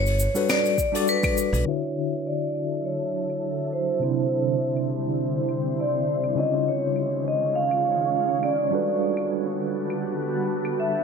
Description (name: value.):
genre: sunset chillout.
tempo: 102 BPM.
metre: 4/4.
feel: swing 54% on 16ths.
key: D major.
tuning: A4 = 440 Hz.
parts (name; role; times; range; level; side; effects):
vibraphone with hard mallets; melody; 0.0-11.0 s; B4 to E#5; -26 LUFS; right 1 dB; digital delay.
upright bass; bass; 0.0-1.6 s; G1 to B1; -24 LUFS; equal; none.
jazz brush drum kit; drums; 0.1-10.8 s; cabasa, claves, hi-hat, snare drum; -29 LUFS; left 1 dB; none.
tine electric piano; accompaniment; 0.3-11.0 s; C3 to E5; -27 LUFS; moving between left 7 dB and right 6 dB; medium stereo tremolo, auto-pan, tape echo.
electronic kick drum; drums; 0.8-1.3 s; none; -27 LUFS; equal; none.
shimmering ambient pad; sustained chords; 2.5-11.0 s; D3 to E5; -29 LUFS; right 1 dB; chorus, built-in reverb.
room: moderate digital room reverb, RT60 1.0 s, studio reverb.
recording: low-pass filter.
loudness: -22 LUFS.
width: side -5 dB against mid.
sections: 0.0-1.7 A section; 1.7-11.0 B section.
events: filter sweep on tine electric piano 0.0-1.7; filter sweep 1.7-11.0.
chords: 0.0 Gmaj9; 1.7 Dmaj9; 4.0 Cadd9; 6.4 C#add9; 8.7 Gmaj9.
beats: 0.49 1.07 | 1.66 2.25 2.84 3.43 | 4.02 4.60 5.19 5.78 | 6.37 6.96 7.54 8.13 | 8.72 9.31 9.90 10.49.